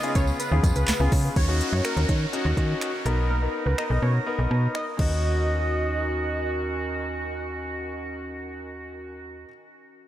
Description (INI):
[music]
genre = dance-pop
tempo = 124 BPM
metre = 4/4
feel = straight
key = Eb minor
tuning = A4 = 437 Hz
[part]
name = wide unison lead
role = melody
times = 0.0-6.6 s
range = Bb4 to Eb5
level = -33 LUFS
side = right 1 dB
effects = analog delay
[part]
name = clear concert grand piano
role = accompaniment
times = 0.0-9.5 s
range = Cb4 to A#4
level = -32 LUFS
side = left 3 dB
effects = sidechain pumping
[part]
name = mellow woodwind section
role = sustained chords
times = 0.0-9.5 s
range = Db3 to A#4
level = -32 LUFS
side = right 2 dB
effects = sidechain pumping
[part]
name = smooth R&B drum kit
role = drums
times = 0.0-5.1 s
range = crash cymbal, finger snaps, handclaps, hi-hat, kick drum, snare drum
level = -26 LUFS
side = equal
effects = overdrive
[part]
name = slap-like FM bass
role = bass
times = 0.2-9.5 s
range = B1 to Eb3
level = -25 LUFS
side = equal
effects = sidechain pumping
[part]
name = tambourine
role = percussion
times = 0.2-1.2 s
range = none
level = -40 LUFS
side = right 7 dB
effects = none
[part]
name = downlifter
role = sound effects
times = 1.4-5.2 s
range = none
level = -36 LUFS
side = equal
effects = none
[sound]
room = moderate huge ambient reverb, RT60 5.0 s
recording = dreamy mix soaked in reverb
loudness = -22 LUFS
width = side -12 dB against mid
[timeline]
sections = 0.0-1.4 A section; 1.4-5.2 B section; 5.2-9.1 C section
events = drop 0.0-1.4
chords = 0.0 Db7; 1.4 Ebm7; 3.1 Bmaj7; 5.0 Ebm7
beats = 0.40 0.88 | 1.36 1.85 2.33 2.81 | 3.30 3.78 4.27 4.75 | 5.23 5.72 6.20 6.68 | 7.17 7.65 8.14 8.62